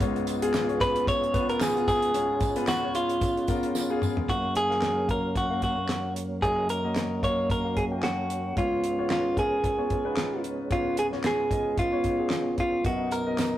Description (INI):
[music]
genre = piano-driven pop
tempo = 112 BPM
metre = 4/4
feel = swing 56% on 16ths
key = F# major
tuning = A4 = 441 Hz
[part]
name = warm concert grand piano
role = accompaniment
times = 0.0-13.6 s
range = B1 to G#5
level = -31 LUFS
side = left 2 dB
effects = none
[part]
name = tonewheel organ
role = sustained chords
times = 0.0-13.6 s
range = F#2 to E#4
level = -33 LUFS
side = equal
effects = chorus vibrato, slow rotary speaker
[part]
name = damped 70s drum kit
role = drums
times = 0.0-13.5 s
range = handclaps, hi-hat, kick drum, snare drum, toms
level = -31 LUFS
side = equal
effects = none
[part]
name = tambourine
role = percussion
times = 0.3-4.2, 12.8-13.5 s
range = none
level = -44 LUFS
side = right 4 dB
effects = none
[part]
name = direct-recorded clean electric guitar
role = melody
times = 0.8-13.6 s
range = E#4 to C#5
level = -26 LUFS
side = right 1 dB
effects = none
[sound]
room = moderate stone room reverb, RT60 0.9 s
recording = rough rehearsal-room recording, warm saturation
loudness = -24 LUFS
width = side -13 dB against mid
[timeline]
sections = 0.0-4.3 A section; 4.3-13.6 B section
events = drum fill 3.8-4.3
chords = 0.0 C#7; 4.3 F#maj7; 8.6 C#7; 12.8 Bmaj7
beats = | 0.00 0.54 1.07 1.61 | 2.15 2.68 3.22 3.75 | 4.29 4.82 5.36 5.89 | 6.43 6.96 7.50 8.03 | 8.57 9.10 9.64 10.17 | 10.71 11.24 11.78 12.31 | 12.85 13.38